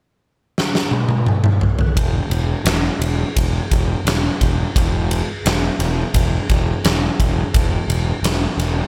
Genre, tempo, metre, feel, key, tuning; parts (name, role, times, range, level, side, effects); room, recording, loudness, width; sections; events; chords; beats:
classic rock; 86 BPM; 4/4; straight; A4 = 440 Hz
huge arena drum kit; drums; 0.6-8.8 s; kick drum, ride cymbal, snare drum, toms; -20 LUFS; equal
fuzz picked electric bass; bass; 2.0-8.8 s; E1; -22 LUFS; equal; overdrive
little or no reverb; -18 LUFS; mono
0.0-2.0 A section; 2.0-8.9 B section
drum fill 0.6-2.0
0.57 1.27 | 1.97 2.67 3.36 4.06 | 4.76 5.46 6.15 6.85 | 7.54 8.24